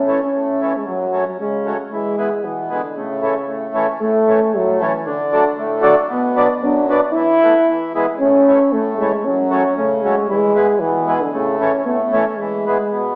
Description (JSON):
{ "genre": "alpine folk", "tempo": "115 BPM", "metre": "2/4", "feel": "straight", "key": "A major", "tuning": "A4 = 440 Hz", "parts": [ { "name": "mellow euphonium", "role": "melody", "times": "0.0-13.2 s", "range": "C#3 to E4", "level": "-16 LUFS", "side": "equal", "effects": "none" }, { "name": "mellow accordion", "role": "accompaniment", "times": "0.0-13.2 s", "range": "F#2 to D4", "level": "-18 LUFS", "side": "equal", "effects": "none" } ], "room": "wet recital hall reverb, RT60 1.5 s", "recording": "recorded in a church or concert hall, small speaker sound", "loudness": "-14 LUFS", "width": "side -33 dB against mid", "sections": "0.0-4.0 A section; 4.0-12.4 A section", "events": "none", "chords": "0.0 A; 0.9 F#m; 1.9 E; 3.0 A; 5.1 D; 6.1 Bm; 7.1 Esus4; 7.7 E; 8.2 A; 9.2 F#m; 10.3 E; 11.3 A; 12.4 E", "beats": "0.34 | 0.86 1.38 | 1.91 2.43 | 2.95 3.48 | 4.01 4.54 | 5.06 5.58 | 6.10 6.62 | 7.14 7.67 | 8.20 8.72 | 9.25 9.77 | 10.29 10.80 | 11.32 11.85 | 12.38 12.91" }